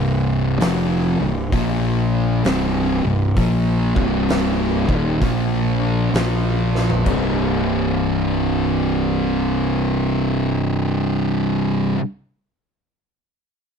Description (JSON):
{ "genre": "stoner and doom metal", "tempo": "65 BPM", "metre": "4/4", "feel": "swing 65% on 8ths", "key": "C minor", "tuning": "A4 = 440 Hz", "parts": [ { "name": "thick fuzz guitar", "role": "riff", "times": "0.0-12.0 s", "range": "C2 to Bb3", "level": "-18 LUFS", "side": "equal", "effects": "distortion" }, { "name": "fuzz fingered electric bass", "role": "bass", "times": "0.0-11.9 s", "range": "C1 to Bb1", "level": "-23 LUFS", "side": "equal", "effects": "overdrive" }, { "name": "oversized low-tuned drum kit", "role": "drums", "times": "0.6-7.3 s", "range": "crash cymbal, hi-hat, kick drum, snare drum, toms", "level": "-25 LUFS", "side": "equal", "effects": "none" } ], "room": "little or no reverb", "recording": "none", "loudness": "-17 LUFS", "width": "side -6 dB against mid", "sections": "0.0-7.1 A section; 7.1-10.8 B section", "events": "drum fill 6.6-7.1", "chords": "0.0 C5; 1.5 Bb5; 2.4 Cm; 5.2 Bb5; 7.1 C5" }